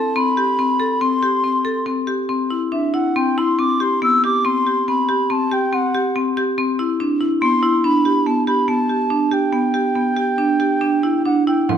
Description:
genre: contemporary instrumental, chamber music in an uneven meter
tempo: 141 BPM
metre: 5/4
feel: straight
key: unclear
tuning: A4 = 440 Hz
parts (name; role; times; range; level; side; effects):
- reedy baroque flute; melody; 0.0-11.8 s; E5 to E6; -20 LUFS; right 1 dB; none
- marimba with hard mallets; arpeggios; 0.0-11.8 s; B3 to A4; -18 LUFS; left 1 dB; none
- frame drum; percussion; 11.7-11.8 s; none; -19 LUFS; right 12 dB; none
room: light reverb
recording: close, detailed microphones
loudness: -16 LUFS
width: side -8 dB against mid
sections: 0.0-11.7 A section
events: none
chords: 0.0 D7sus4 (rootless); 3.2 C; 7.4 G6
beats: 0.16 0.59 | 1.01 1.44 1.87 2.29 2.73 | 3.16 3.59 4.02 4.45 4.88 | 5.30 5.72 6.15 6.57 7.00 | 7.42 7.84 8.26 8.69 9.11 | 9.53 9.96 10.39 10.82 11.26 | 11.69

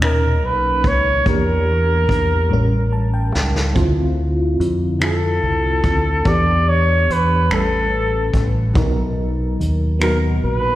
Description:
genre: slow six-eight R&B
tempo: 48 BPM (dotted quarters)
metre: 6/8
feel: straight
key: unclear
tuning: A4 = 443 Hz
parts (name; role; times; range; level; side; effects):
- warm flugelhorn; melody; 0.0-10.8 s; A4 to D5; -19 LUFS; equal; slapback echo, tape echo
- FM electric piano with tremolo; accompaniment; 0.0-10.8 s; A2 to A5; -22 LUFS; equal; phaser, slapback echo
- deep dub fingered electric bass; bass; 0.0-10.8 s; A1 to F2; -19 LUFS; equal; none
- vintage brush drum kit; drums; 0.0-10.2 s; finger snaps, hi-hat, kick drum, snare drum; -21 LUFS; equal; none
room: small room ambience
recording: live gig heard through the venue's PA, recital hall reverb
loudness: -15 LUFS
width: side -15 dB against mid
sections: 0.0-10.8 A section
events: drum fill 2.5-3.8; FM electric piano fill 2.5-3.8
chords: 0.0 Bmaj9; 1.3 Em7b5; 2.5 A7b9; 3.8 Dm9; 6.3 Em7; 7.5 A9; 8.8 Bmaj7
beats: 0.01 | 1.26 2.51 | 3.76 5.01 | 6.26 7.51 | 8.76 10.01

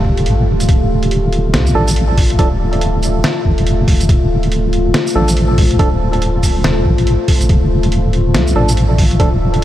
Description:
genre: deep dubstep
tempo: 141 BPM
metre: 4/4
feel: swing 60% on 16ths, half-time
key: D minor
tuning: A4 = 440 Hz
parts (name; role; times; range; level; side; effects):
- deep dark ambient pad; sustained chords; 0.0-9.6 s; A3 to E5; -19 LUFS; left 2 dB; chorus, built-in reverb
- deep soft wobble bass; bass; 0.0-9.6 s; D1 to C2; -14 LUFS; equal; chorus, tube saturation
- electronic kick drum; drums; 0.0-9.3 s; none; -13 LUFS; equal; small room reverb
- trip hop sampler-style drum kit; drums; 0.2-9.6 s; hi-hat, shaker, snare drum; -21 LUFS; right 1 dB; small room reverb
- percussive organ stab; stabs; 1.8-2.5, 5.2-5.9, 8.6-9.3 s; F3 to A4; -22 LUFS; right 2 dB; chorus, dub echo
room: light reverb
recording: none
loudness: -11 LUFS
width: side -13 dB against mid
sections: 0.0-9.6 A section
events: kick drops out 0.3-0.7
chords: 0.0 Dm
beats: 0.26 | 0.69 1.11 1.54 1.96 | 2.39 2.81 3.24 3.67 | 4.09 4.52 4.94 5.37 | 5.79 6.22 6.64 7.07 | 7.50 7.92 8.35 8.77 | 9.20 9.62

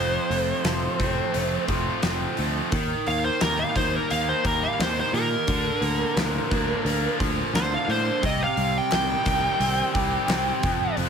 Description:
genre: classic rock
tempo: 87 BPM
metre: 4/4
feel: straight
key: C dorian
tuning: A4 = 439 Hz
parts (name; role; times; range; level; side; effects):
- dark smooth lead guitar; melody; 0.0-11.0 s; Bb4 to G5; -26 LUFS; equal; overdrive
- distorted electric guitar; riff; 0.0-11.1 s; F2 to G4; -29 LUFS; right 14 dB; distortion
- tight distorted guitar; riff; 0.0-11.1 s; F2 to Eb4; -29 LUFS; left 13 dB; distortion
- picked electric bass; bass; 0.0-11.1 s; F1 to Bb2; -29 LUFS; equal; none
- huge arena drum kit; drums; 0.3-11.1 s; hi-hat, kick drum, snare drum; -29 LUFS; left 1 dB; none
- group handclap; percussion; 8.9-10.5 s; none; -37 LUFS; left 8 dB; none
room: light reverb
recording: none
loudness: -21 LUFS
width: side -6 dB against mid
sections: 0.0-11.1 A section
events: lead electric guitar solo 0.0-11.1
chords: 0.0 F; 2.7 Eb; 5.5 Bb/D; 8.2 Cm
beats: 0.65 1.34 2.03 | 2.72 3.41 4.10 4.79 | 5.48 6.17 6.86 7.55 | 8.24 8.93 9.62 10.30 | 10.99

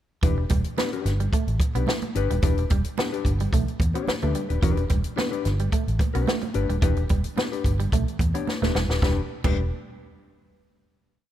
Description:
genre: funk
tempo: 109 BPM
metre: 4/4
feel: straight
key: E dorian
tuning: A4 = 440 Hz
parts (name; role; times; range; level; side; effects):
- hollow-body jazz guitar; accompaniment; 0.2-9.6 s; D4 to C#5; -30 LUFS; left 9 dB; none
- electric guitar at the edge of break-up; riff; 0.2-9.6 s; E3 to B3; -32 LUFS; right 8 dB; none
- vintage muted fingered electric bass; bass; 0.2-9.7 s; D#1 to E2; -25 LUFS; equal; none
- compact cocktail drum kit; drums; 0.2-9.6 s; crash cymbal, hi-hat, kick drum, snare drum; -25 LUFS; equal; none
- congas; percussion; 0.2-9.7 s; none; -34 LUFS; right 5 dB; none
room: light reverb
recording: none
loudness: -22 LUFS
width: side -12 dB against mid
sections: 0.2-9.0 groove; 9.0-11.2 final chord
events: drum fill 8.5-9.0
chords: 0.2 Em7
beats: | 0.23 0.78 1.33 1.88 | 2.42 2.97 3.52 4.07 | 4.62 5.17 5.72 6.28 | 6.83 7.38 7.93 8.48 | 9.03 9.57

